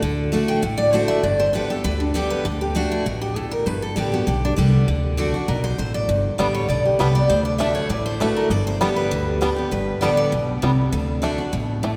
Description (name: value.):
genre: bluegrass.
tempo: 198 BPM.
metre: 4/4.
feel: straight.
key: G major.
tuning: A4 = 440 Hz.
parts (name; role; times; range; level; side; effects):
picked steel-string acoustic guitar; accompaniment; 0.0-12.0 s; G2 to G4; -26 LUFS; equal; none.
upright bass; bass; 0.0-11.9 s; G1 to D2; -26 LUFS; equal; none.
picked steel-string acoustic guitar; melody; 0.5-10.3 s; D4 to G5; -26 LUFS; equal; none.
bluegrass banjo; melody; 6.4-11.9 s; G3 to D4; -29 LUFS; equal; none.
room: wet cathedral reverb, RT60 4.5 s.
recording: recorded in a church or concert hall.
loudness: -21 LUFS.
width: mono.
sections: 0.0-12.0 A section.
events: none.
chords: 0.0 D; 1.2 G; 2.5 D; 3.7 G; 4.9 D; 6.1 G; 7.3 D; 8.5 G; 10.9 D.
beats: | 0.02 0.33 0.63 0.93 | 1.24 1.54 1.84 2.15 | 2.45 2.75 3.06 3.36 | 3.67 3.97 4.27 4.57 | 4.88 5.18 5.48 5.78 | 6.09 6.39 6.69 6.99 | 7.30 7.60 7.90 8.20 | 8.51 8.81 9.11 9.41 | 9.71 10.02 10.32 10.62 | 10.93 11.23 11.53 11.83.